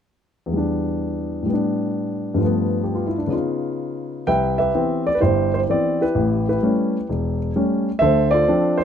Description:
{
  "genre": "solo jazz",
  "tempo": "129 BPM",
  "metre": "4/4",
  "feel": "swing 67% on 8ths, rubato",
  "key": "C major",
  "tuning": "A4 = 441 Hz",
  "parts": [
    { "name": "dark grand piano", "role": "solo", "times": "0.5-8.8 s", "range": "E1 to G5", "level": "-18 LUFS", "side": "equal", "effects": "none" }
  ],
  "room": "light reverb",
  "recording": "close, detailed microphones",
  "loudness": "-18 LUFS",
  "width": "side -8 dB against mid",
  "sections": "0.5-4.3 A section; 4.3-8.8 B section",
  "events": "none",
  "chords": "0.5 Em7; 1.5 A9sus4; 2.4 G9; 3.3 Db9; 4.3 Cmaj7; 6.2 A7; 8.0 Dm7"
}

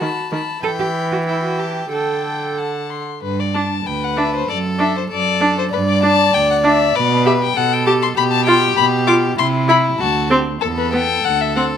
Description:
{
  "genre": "quick classical-period movement for string quartet",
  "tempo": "97 BPM",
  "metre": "2/4",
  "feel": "rubato",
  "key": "G major",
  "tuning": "A4 = 440 Hz",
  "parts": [
    { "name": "warm violin", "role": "melody", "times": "0.0-11.6 s", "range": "A4 to D6", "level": "-20 LUFS", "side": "left 10 dB", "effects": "none" },
    { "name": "warm violin", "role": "second line", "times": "0.0-11.8 s", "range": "E4 to A5", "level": "-21 LUFS", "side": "left 2 dB", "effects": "none" },
    { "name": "warm viola", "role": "accompaniment", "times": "0.0-11.7 s", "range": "D3 to G4", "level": "-19 LUFS", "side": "right 2 dB", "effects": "none" },
    { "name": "warm cello", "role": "bass", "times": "0.0-11.8 s", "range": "D2 to A4", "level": "-21 LUFS", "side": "right 5 dB", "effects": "none" }
  ],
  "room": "light reverb",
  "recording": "close, detailed microphones",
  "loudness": "-14 LUFS",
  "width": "side -8 dB against mid",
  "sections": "0.0-3.2 A section; 3.2-11.8 B section",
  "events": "none",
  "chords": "0.0 B7/D#; 0.6 Em; 1.9 Dsus4; 2.6 D; 3.2 G; 4.5 D/F#; 5.7 G5; 7.0 G/B; 8.2 G7/B; 9.4 C; 10.0 D7; 10.6 Em; 11.2 D7"
}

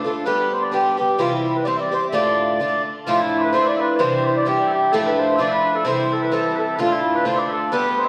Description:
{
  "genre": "celtic folk",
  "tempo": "129 BPM",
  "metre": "2/4",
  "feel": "swing 56% on 8ths",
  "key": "D dorian",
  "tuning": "A4 = 437 Hz",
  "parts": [
    { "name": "mellow accordion", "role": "melody", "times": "0.0-8.1 s", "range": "E4 to E5", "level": "-22 LUFS", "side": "equal", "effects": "none" },
    { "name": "picked twelve-string acoustic guitar", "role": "accompaniment", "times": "0.0-8.1 s", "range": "D2 to G4", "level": "-24 LUFS", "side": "equal", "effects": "none" },
    { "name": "mellow small bagpipes", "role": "second line", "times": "3.1-8.1 s", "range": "E4 to E5", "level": "-29 LUFS", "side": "equal", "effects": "none" }
  ],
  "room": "wet recital hall reverb, RT60 1.2 s",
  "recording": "recorded in a church or concert hall",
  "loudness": "-20 LUFS",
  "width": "mono",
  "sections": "0.0-3.1 A section; 3.1-8.1 A section",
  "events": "none",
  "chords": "0.3 G/D; 1.2 C; 2.1 Dm; 3.1 Dmadd9; 4.0 Cadd9; 4.9 Dmadd9; 5.9 C; 6.8 Dm"
}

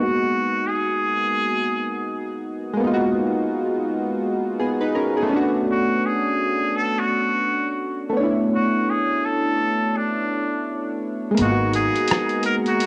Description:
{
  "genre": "lo-fi hip hop",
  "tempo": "84 BPM",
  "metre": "4/4",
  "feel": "swing 61% on 16ths",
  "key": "unclear",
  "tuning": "A4 = 441 Hz",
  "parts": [
    { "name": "trumpet with straight mute", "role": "melody", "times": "0.0-12.9 s", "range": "D4 to A#4", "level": "-26 LUFS", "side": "equal", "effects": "cassette tape" },
    { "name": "warm analog keys", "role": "accompaniment", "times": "0.0-12.9 s", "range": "G#3 to C#5", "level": "-24 LUFS", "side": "equal", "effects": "chorus, cassette tape" },
    { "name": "clear woodwind section", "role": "sustained chords", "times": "11.4-12.9 s", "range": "G#4 to A#5", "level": "-36 LUFS", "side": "equal", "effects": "cassette tape" },
    { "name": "upright bass", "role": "bass", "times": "11.4-11.9 s", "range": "G#1", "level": "-28 LUFS", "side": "equal", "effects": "none" },
    { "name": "dusty soul sampler-style drum kit", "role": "drums", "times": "11.4-12.9 s", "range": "hi-hat, rim click", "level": "-28 LUFS", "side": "equal", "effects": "cassette tape" }
  ],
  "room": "light reverb",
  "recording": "home recording on cassette",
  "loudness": "-22 LUFS",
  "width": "mono",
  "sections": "0.0-11.4 A section; 11.4-12.9 B section",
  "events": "kick muted 11.4-12.9",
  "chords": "0.0 G#m9; 5.3 Bm9; 11.4 G#m9"
}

